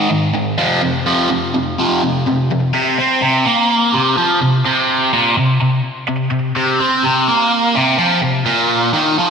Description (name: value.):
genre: rock.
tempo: 126 BPM.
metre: 4/4.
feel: straight.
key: unclear.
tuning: A4 = 440 Hz.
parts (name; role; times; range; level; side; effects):
cranked stack guitar; solo; 0.0-9.3 s; F2 to C4; -13 LUFS; equal; overdrive, phaser, slapback echo.
room: wet lush hall reverb, RT60 2.6 s.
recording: big arena sound.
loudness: -13 LUFS.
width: side -6 dB against mid.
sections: 0.0-2.7 A section; 2.7-9.3 B section.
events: none.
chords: 0.0 Ab5; 0.6 F5; 2.7 N.C..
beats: 0.34 | 0.82 1.30 1.78 2.26 | 2.74 3.21 3.69 4.17 | 4.65 5.13 5.60 6.08 | 6.56 7.04 7.51 7.99 | 8.47 8.95.